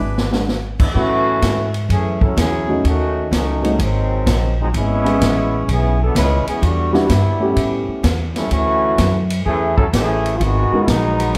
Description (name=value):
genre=jazz, big band swing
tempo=127 BPM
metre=4/4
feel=swing 67% on 8ths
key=A major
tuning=A4 = 439 Hz
part: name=upright bass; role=bass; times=0.0-11.4 s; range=G#1 to A2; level=-22 LUFS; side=equal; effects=none
part: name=swinging big-band drum kit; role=drums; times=0.2-11.4 s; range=crash cymbal, hi-hat, kick drum, ride cymbal, snare drum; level=-24 LUFS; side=equal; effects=none
part: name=dark baby grand piano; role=accompaniment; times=0.3-11.3 s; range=Gb3 to Bb4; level=-22 LUFS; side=equal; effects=none
part: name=clear trombone section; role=second line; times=0.8-11.4 s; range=D3 to B4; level=-22 LUFS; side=equal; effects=none
room=moderate large studio reverb, RT60 1.2 s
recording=heard from further back in the room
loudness=-17 LUFS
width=mono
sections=0.9-11.4 A section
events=drum fill 0.0-0.5; trombone section solo 0.9-11.4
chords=0.0 E7; 0.9 A6; 2.8 D#m7b5; 3.8 G#7; 4.7 C#m7; 6.6 Em7; 7.6 A7; 8.5 Dmaj9; 10.4 G#m7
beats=0.00 0.48 | 0.95 1.42 1.90 2.37 | 2.84 3.32 3.79 4.26 | 4.73 5.21 5.68 6.15 | 6.62 7.10 7.57 8.04 | 8.51 8.98 9.46 9.93 | 10.40 10.87 11.35